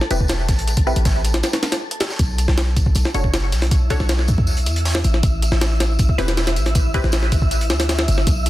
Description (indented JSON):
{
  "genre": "drum and bass, jungle",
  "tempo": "158 BPM",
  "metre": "4/4",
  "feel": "straight",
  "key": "unclear",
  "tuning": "A4 = 440 Hz",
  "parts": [
    { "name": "jungle sampler-style drum kit", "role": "drums", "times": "0.0-8.5 s", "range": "hi-hat, kick drum, snare drum", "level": "-19 LUFS", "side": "equal", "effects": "none" },
    { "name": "wind-like tuned noise texture", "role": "texture", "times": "0.0-8.5 s", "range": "E4 to A5", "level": "-30 LUFS", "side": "equal", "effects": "built-in reverb" },
    { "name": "filtered dub chord stab", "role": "stabs", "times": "0.1-7.0 s", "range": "C4 to C#5", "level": "-27 LUFS", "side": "left 1 dB", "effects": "phaser, dub echo" },
    { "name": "warm 808-style bass", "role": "bass", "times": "0.1-8.5 s", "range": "E1 to E2", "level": "-19 LUFS", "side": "equal", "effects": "none" },
    { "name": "crunchy breakbeat drum kit", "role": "drums", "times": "0.1-8.5 s", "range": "hi-hat, snare drum, tambourine", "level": "-30 LUFS", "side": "equal", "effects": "high-pass filter on hats, high-pass filter on snare, high-pass filter on perc, high-pass filter on room" }
  ],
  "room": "small room ambience",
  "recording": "dense, heavily limited modern master",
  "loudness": "-16 LUFS",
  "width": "side -16 dB against mid",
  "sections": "0.0-8.5 A section",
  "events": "break 1.4-2.2",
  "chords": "0.0 A5; 2.2 B7(no3); 5.2 A7(no3)"
}